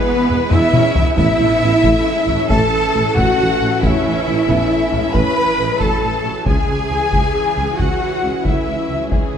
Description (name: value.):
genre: cinematic, epic orchestral film score.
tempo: 91 BPM (dotted quarters).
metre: 12/8.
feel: straight.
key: unclear.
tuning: A4 = 440 Hz.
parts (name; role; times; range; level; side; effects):
warm symphonic violin section; melody; 0.0-9.4 s; G#4 to B5; -24 LUFS; left 3 dB; none.
dark symphonic violin section; second line; 0.0-9.4 s; G#4 to B5; -27 LUFS; left 4 dB; none.
mellow hollow concert flute; second line; 0.0-9.4 s; G#4 to B5; -27 LUFS; left 2 dB; none.
rich symphonic viola section; accompaniment; 0.0-9.4 s; E3 to C#4; -28 LUFS; right 1 dB; none.
dark trombone section; sustained chords; 0.0-9.4 s; E3 to C#4; -28 LUFS; right 2 dB; none.
mellow French horn section; sustained chords; 0.0-9.4 s; G#3 to B4; -25 LUFS; left 4 dB; none.
rich symphonic string section; sustained chords; 0.0-9.4 s; B3 to E5; -30 LUFS; left 2 dB; none.
clear trumpet section; stabs; 0.0-9.4 s; G#4 to B5; -24 LUFS; equal; none.
rich symphonic cello section; bass; 0.0-9.4 s; G#3 to B4; -20 LUFS; right 3 dB; none.
dark tuba; bass; 0.3-9.4 s; E1 to C#2; -24 LUFS; right 1 dB; none.
rich symphonic double bass section; bass; 0.3-9.4 s; A1 to E2; -24 LUFS; right 2 dB; none.
taiko ensemble; drums; 0.5-9.4 s; none; -20 LUFS; left 1 dB; none.
room: wet scoring stage reverb, RT60 2.1 s.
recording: dark, warm production.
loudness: -13 LUFS.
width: side -8 dB against mid.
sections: 0.0-9.4 A section.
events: drum fill 0.5-1.2.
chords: 0.0 E; 1.2 A; 6.5 C#m.